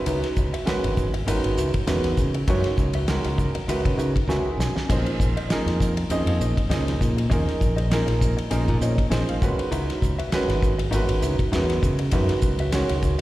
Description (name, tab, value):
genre	electric jazz fusion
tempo	100 BPM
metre	4/4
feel	swing 55% on 16ths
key	unclear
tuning	A4 = 440 Hz
part	warm baby grand piano	accompaniment	0.0-13.1 s	Eb3 to Ab5	-26 LUFS	right 2 dB	slapback echo
part	mellow electric guitar	stabs	0.1-13.2 s	Db4 to Fb5	-31 LUFS	left 1 dB	analog chorus, analog delay, slapback echo
part	modern bright fingered electric bass	bass	0.1-13.2 s	Ab1 to Db3	-24 LUFS	equal	none
part	damped 70s drum kit	drums	0.1-13.2 s	crash cymbal, hi-hat, kick drum, ride cymbal, snare drum	-26 LUFS	equal	none
room	small room ambience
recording	live gig heard through the venue's PA, recital hall reverb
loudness	-20 LUFS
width	side -16 dB against mid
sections	0.0-13.2 A section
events	grand piano fill 4.0-4.9, 8.5-9.7; drum fill 4.3-4.9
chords	0.0 Dbm11; 4.9 Bbm11; 9.4 Dbm11